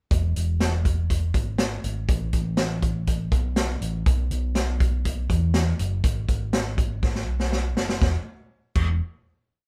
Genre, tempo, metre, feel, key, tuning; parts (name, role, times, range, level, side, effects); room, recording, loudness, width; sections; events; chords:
jangly indie pop; 122 BPM; 4/4; straight; E major; A4 = 441 Hz
picked electric bass; bass; 0.1-9.0 s; E1 to E2; -27 LUFS; equal
vintage drum kit; drums; 0.1-8.9 s; crash cymbal, hi-hat, kick drum, snare drum; -26 LUFS; equal
light reverb; band playing live in one room; -24 LUFS; mono
0.1-8.0 verse; 8.0-9.7 final note
drum fill 7.0-8.0